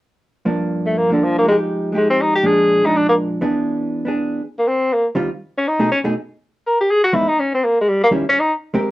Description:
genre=jazz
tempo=243 BPM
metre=4/4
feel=swing 60% on 8ths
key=Eb major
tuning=A4 = 440 Hz
part: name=vintage hollow-body jazz guitar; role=accompaniment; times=0.5-8.9 s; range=G2 to Bb4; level=-19 LUFS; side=right 1 dB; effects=none
part: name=warm tenor saxophone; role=melody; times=0.9-8.5 s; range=D3 to Bb4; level=-15 LUFS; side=left 1 dB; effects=none
room=light reverb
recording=worn, warbling old tape, cassette tape, warbly pitch drift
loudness=-15 LUFS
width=side -17 dB against mid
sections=0.5-4.4 A section; 4.4-8.9 B section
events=none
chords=0.5 Gm7; 1.4 Fm9; 2.4 Bb7; 3.4 E7; 4.4 Eb69; 5.4 B13; 6.4 Emaj7; 7.4 N.C.; 7.9 Eb7b9; 8.4 Abmaj9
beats=| 0.45 0.70 0.94 1.19 | 1.44 1.69 1.93 2.18 | 2.43 2.67 2.92 3.17 | 3.42 3.66 3.91 4.16 | 4.40 4.65 4.90 5.14 | 5.39 5.64 5.89 6.13 | 6.38 6.63 6.87 7.12 | 7.37 7.61 7.86 8.11 | 8.35 8.60 8.85

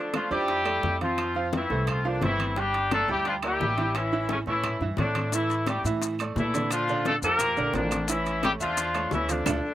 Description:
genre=latin, salsa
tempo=174 BPM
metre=4/4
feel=straight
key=unclear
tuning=A4 = 438 Hz
part: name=clear horn section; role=melody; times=0.0-9.7 s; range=C#3 to Bb4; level=-26 LUFS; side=left 1 dB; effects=slapback echo
part: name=bright baby grand piano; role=accompaniment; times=0.0-9.6 s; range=D3 to G5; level=-32 LUFS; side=right 4 dB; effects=slapback echo
part: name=bongos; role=percussion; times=0.1-9.5 s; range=none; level=-36 LUFS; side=left 6 dB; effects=slapback echo
part: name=claves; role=percussion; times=0.1-9.5 s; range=none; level=-37 LUFS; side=right 8 dB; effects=none
part: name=congas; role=percussion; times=0.1-9.6 s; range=none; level=-36 LUFS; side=left 2 dB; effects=none
part: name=timbales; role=percussion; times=0.1-9.5 s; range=none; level=-37 LUFS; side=right 5 dB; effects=slapback echo
part: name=upright bass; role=bass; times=0.3-9.6 s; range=G1 to Bb2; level=-32 LUFS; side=equal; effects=none
part: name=maracas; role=percussion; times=5.3-9.5 s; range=none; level=-35 LUFS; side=left 8 dB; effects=none
room=little or no reverb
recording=recorded outdoors, with no room sound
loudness=-24 LUFS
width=side -13 dB against mid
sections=0.0-9.7 A section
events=drum fill 9.5; band accent 9.5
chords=0.0 Dm; 1.2 F; 2.6 Gm; 3.9 A; 5.3 Asus4; 6.7 Bb; 8.1 A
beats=0.14 0.48 0.83 | 1.18 1.52 1.87 2.22 | 2.56 2.91 3.25 3.60 | 3.94 4.29 4.64 4.98 | 5.33 5.67 6.02 6.36 | 6.71 7.05 7.40 7.74 | 8.09 8.43 8.78 9.12 | 9.47

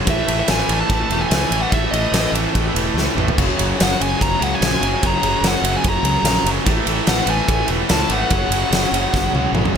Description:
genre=hard rock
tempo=146 BPM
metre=4/4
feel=straight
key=unclear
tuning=A4 = 440 Hz
part: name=overdriven tonewheel organ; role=sustained chords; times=0.0-9.8 s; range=F#3 to B4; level=-31 LUFS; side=equal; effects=none
part: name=distorted electric guitar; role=riff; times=0.0-9.7 s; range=F#2 to A3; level=-26 LUFS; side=right 2 dB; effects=distortion
part: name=overdriven semi-hollow guitar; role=riff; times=0.0-9.8 s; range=F#2 to A3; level=-25 LUFS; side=left 12 dB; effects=none
part: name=tight distorted guitar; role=riff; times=0.0-9.8 s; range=F#2 to A3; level=-25 LUFS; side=right 15 dB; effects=distortion
part: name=bluesy overdriven lead guitar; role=melody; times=0.1-9.5 s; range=D#5 to A#5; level=-22 LUFS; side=left 1 dB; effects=distortion
part: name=modern bright fingered electric bass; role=bass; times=0.1-9.8 s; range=E1 to C#2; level=-23 LUFS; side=equal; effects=none
part: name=big rock drum kit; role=drums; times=0.1-9.8 s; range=crash cymbal, kick drum, ride cymbal, snare drum, toms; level=-20 LUFS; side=equal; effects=none
room=light reverb, studio ambience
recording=none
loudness=-15 LUFS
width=side -7 dB against mid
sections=0.0-9.8 A section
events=drum fill 3.0-3.4, 9.1-9.8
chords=0.1 A5; 3.4 F#; 6.7 A5; 8.3 F#5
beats=| 0.07 0.49 0.90 1.31 | 1.73 2.14 2.55 2.96 | 3.38 3.79 4.20 4.61 | 5.02 5.43 5.85 6.26 | 6.67 7.08 7.49 7.91 | 8.32 8.73 9.14 9.55

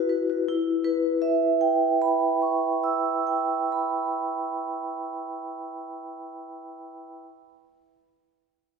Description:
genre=classical, contemporary piece for solo vibraphone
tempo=53 BPM (dotted quarters)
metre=6/8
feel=rubato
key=E dorian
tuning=A4 = 440 Hz
part: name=vibraphone with medium hard mallets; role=solo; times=0.0-7.2 s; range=E4 to E6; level=-24 LUFS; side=right 1 dB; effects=none
room=wet concert hall reverb, RT60 1.9 s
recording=heard from further back in the room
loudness=-23 LUFS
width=side -4 dB against mid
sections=0.5-5.0 A section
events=none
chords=0.5 Em6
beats=| 0.48 1.62 | 2.74 3.85

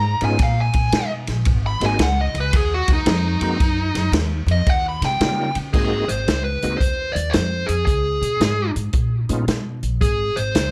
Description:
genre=electric blues shuffle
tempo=112 BPM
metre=4/4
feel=swing 66% on 8ths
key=Ab mixolydian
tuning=A4 = 440 Hz
part: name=dark smooth lead guitar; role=melody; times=0.0-10.7 s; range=Eb4 to Cb6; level=-25 LUFS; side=equal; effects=overdrive, plate reverb
part: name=upright bass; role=bass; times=0.0-10.7 s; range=Ab1 to Db3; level=-25 LUFS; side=equal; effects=none
part: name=bright tonewheel organ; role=accompaniment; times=0.2-9.5 s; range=G3 to Gb4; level=-28 LUFS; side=equal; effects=slow rotary speaker, overdrive, chorus vibrato, plate reverb
part: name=vintage drum kit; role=drums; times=0.2-10.7 s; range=crash cymbal, hi-hat, kick drum, ride cymbal, snare drum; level=-24 LUFS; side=equal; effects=none
room=light reverb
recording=none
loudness=-20 LUFS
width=mono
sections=0.0-5.7 A section; 5.7-10.7 B section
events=lead electric guitar solo 0.0-5.7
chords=0.0 Db7(no3) (rootless); 1.5 Ab7(no3); 4.7 Eb7; 5.7 Ab7; 7.9 Db7(no3); 10.0 Ab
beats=0.40 0.93 | 1.46 2.00 2.53 3.06 | 3.59 4.13 4.66 5.19 | 5.73 6.26 6.80 7.33 | 7.87 8.40 8.94 9.47 | 10.01 10.54

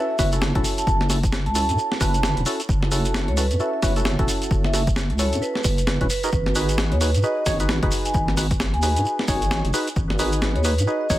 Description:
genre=UK garage, two-step garage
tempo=132 BPM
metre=4/4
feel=swing 60% on 16ths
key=F# dorian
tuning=A4 = 440 Hz
part: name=vibraphone with medium mallets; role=melody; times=0.0-11.2 s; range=B4 to A5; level=-27 LUFS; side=right 1 dB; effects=tape echo
part: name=percussive organ stab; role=stabs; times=0.0-11.2 s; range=C#4 to C#5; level=-27 LUFS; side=equal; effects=analog chorus, tape echo
part: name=deep soft wobble bass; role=bass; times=0.2-11.2 s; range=E1 to G#2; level=-23 LUFS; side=equal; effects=chorus
part: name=breakbeat sampler-style drum kit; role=drums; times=0.2-11.2 s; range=hi-hat, snare drum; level=-27 LUFS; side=equal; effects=none
part: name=electronic kick drum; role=drums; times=0.2-11.2 s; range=none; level=-24 LUFS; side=equal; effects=none
part: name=shekere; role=percussion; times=0.2-11.2 s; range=none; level=-32 LUFS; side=right 2 dB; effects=none
room=little or no reverb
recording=none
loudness=-19 LUFS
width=side -14 dB against mid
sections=0.0-11.2 A section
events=none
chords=0.0 F#m7; 6.1 G#m7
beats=0.42 | 0.87 1.33 1.78 2.23 | 2.69 3.14 3.60 4.05 | 4.51 4.96 5.42 5.87 | 6.33 6.78 7.24 7.69 | 8.14 8.60 9.05 9.51 | 9.96 10.42 10.87

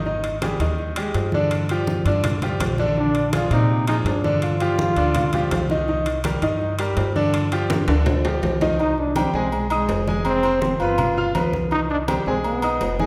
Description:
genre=latin, salsa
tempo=165 BPM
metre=4/4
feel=straight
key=C minor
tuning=A4 = 440 Hz
part: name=bright concert grand piano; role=accompaniment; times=0.0-13.1 s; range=C3 to F6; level=-26 LUFS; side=equal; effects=none
part: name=upright bass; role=bass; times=0.0-13.1 s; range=F1 to Bb2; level=-28 LUFS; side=equal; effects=none
part: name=congas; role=percussion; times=0.1-13.1 s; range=none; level=-30 LUFS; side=equal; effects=none
part: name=timbales and agogo bells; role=percussion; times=0.2-13.0 s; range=none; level=-31 LUFS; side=equal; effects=none
part: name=warm trombone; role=melody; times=3.0-5.7, 8.8-13.1 s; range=G#3 to F4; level=-26 LUFS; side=equal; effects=none
room=wet recital hall reverb, RT60 1.8 s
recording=recorded in a church or concert hall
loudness=-21 LUFS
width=mono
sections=0.0-8.8 A section; 8.8-13.1 B section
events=drum fill 7.7-8.8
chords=0.1 Ab5; 1.5 G5; 3.0 Bb9; 4.4 G7sus4; 5.9 Cm9; 7.3 G5; 8.8 Cm; 9.5 B6; 10.3 Fm; 11.0 G7; 11.7 Cm; 12.4 B6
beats=| 0.06 0.42 0.79 1.15 | 1.51 1.88 2.24 2.61 | 2.97 3.33 3.70 4.06 | 4.43 4.79 5.15 5.52 | 5.88 6.25 6.61 6.97 | 7.34 7.70 8.07 8.43 | 8.79 9.16 9.53 9.89 | 10.26 10.62 10.98 11.35 | 11.72 12.08 12.45 12.81

